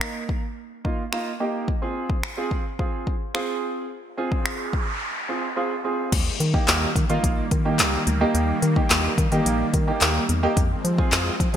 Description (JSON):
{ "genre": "dance-pop", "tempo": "108 BPM", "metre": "4/4", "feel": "straight", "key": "Eb major", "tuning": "A4 = 441 Hz", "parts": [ { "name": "warm grand piano", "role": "accompaniment", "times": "0.0-11.6 s", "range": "Bb3 to Bb4", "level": "-26 LUFS", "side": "right 2 dB", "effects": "analog chorus, sidechain pumping" }, { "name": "deep house drum kit", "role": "drums", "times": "0.0-11.6 s", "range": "crash cymbal, finger snaps, handclaps, hi-hat, kick drum, snare drum", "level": "-23 LUFS", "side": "left 1 dB", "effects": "gated reverb" }, { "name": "noise sweep", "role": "sound effects", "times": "4.3-6.1 s", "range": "none", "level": "-32 LUFS", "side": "right 1 dB", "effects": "none" }, { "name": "supersaw pad", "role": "sustained chords", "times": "6.1-11.6 s", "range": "Eb3 to C4", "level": "-29 LUFS", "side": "equal", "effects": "phaser, sidechain pumping" }, { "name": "organ-like FM bass", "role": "bass", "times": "6.1-11.6 s", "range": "Bb1 to F3", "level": "-24 LUFS", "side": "left 1 dB", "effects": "sidechain pumping" }, { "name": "group handclap", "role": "percussion", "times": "6.7-11.3 s", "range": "none", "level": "barely audible", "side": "none", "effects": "none" } ], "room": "light reverb", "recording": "bright 1980s-style digital production", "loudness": "-21 LUFS", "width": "side -10 dB against mid", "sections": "0.0-6.1 A section; 6.1-11.6 B section", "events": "noise sweep 4.3-6.1", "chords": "0.0 Eb; 1.7 Fm; 6.1 Eb; 10.6 Fm", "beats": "0.01 0.57 1.12 | 1.68 2.23 2.79 3.35 | 3.90 4.46 5.01 5.57 | 6.12 6.68 7.24 7.79 | 8.35 8.90 9.46 10.01 | 10.57 11.12" }